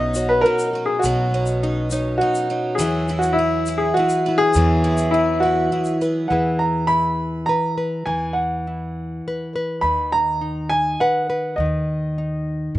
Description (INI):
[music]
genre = acoustic folk duo or small band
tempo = 102 BPM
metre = 3/4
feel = straight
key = unclear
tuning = A4 = 436 Hz
[part]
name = clear upright piano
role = melody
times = 0.0-12.7 s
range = E4 to B5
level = -20 LUFS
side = equal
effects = slapback echo
[part]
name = nylon-string guitar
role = accompaniment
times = 0.0-12.8 s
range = B2 to B4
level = -24 LUFS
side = left 1 dB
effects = none
[part]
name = picked twelve-string acoustic guitar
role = arpeggios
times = 0.0-6.4 s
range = F#3 to G#4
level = -27 LUFS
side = right 5 dB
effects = slapback echo
[part]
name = upright bass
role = bass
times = 0.0-12.8 s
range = B1 to G#2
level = -26 LUFS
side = equal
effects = none
[part]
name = egg shaker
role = percussion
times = 0.1-6.1 s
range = none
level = -34 LUFS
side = left 4 dB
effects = none
[sound]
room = little or no reverb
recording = recorded outdoors, with no room sound, nothing above 10.6 kHz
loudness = -18 LUFS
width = side -15 dB against mid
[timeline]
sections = 0.0-6.3 A section; 6.3-12.8 B section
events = none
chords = 0.0 Badd9; 2.8 Eadd9; 9.8 B/D#